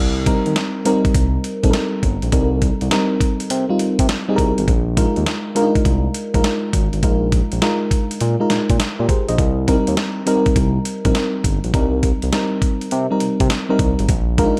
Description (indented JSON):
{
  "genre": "R&B, new jack swing",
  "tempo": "102 BPM",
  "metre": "4/4",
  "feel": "swing 66% on 16ths",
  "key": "C minor",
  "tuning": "A4 = 440 Hz",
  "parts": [
    { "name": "smooth synth bass", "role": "bass", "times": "0.0-14.5 s", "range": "G1 to C3", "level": "-23 LUFS", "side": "equal", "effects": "none" },
    { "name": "mellow FM electric piano", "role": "accompaniment", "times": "0.3-14.6 s", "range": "G3 to Eb5", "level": "-22 LUFS", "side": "equal", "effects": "chorus" },
    { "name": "dusty soul sampler-style drum kit", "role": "drums", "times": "0.3-14.6 s", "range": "hi-hat, kick drum, snare drum", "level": "-22 LUFS", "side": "equal", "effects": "none" }
  ],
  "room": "light reverb",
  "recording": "none",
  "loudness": "-18 LUFS",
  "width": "mono",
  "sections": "0.0-14.6 A section",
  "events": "none",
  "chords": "0.0 Cm7; 4.7 Bb7sus4; 9.4 Cm7; 14.1 Bb7sus4",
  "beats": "0.56 1.15 1.74 | 2.32 2.91 3.50 4.09 | 4.68 5.26 5.85 6.44 | 7.03 7.62 8.21 8.79 | 9.38 9.97 10.56 11.15 | 11.74 12.32 12.91 13.50 | 14.09"
}